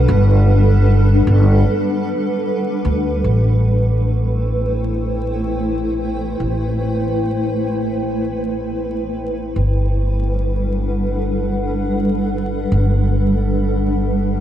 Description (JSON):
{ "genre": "ambient dub", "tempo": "76 BPM", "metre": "4/4", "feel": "swing 53% on 16ths", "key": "A dorian", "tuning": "A4 = 441 Hz", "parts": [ { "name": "granular cloud pad", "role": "sustained chords", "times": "0.0-14.4 s", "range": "G3 to G5", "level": "-19 LUFS", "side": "equal", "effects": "built-in reverb" }, { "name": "upright bass", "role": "bass", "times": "0.0-14.4 s", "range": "G1 to D2", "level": "-17 LUFS", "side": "equal", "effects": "none" } ], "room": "moderate church reverb, RT60 3.9 s", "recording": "dreamy mix soaked in reverb, vinyl crackle, nothing above 11.0 kHz", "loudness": "-15 LUFS", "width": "side -11 dB against mid", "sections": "0.0-3.2 A section; 3.2-14.4 B section", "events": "none", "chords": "0.0 Gmaj9; 3.2 Am7; 9.6 Gmaj9" }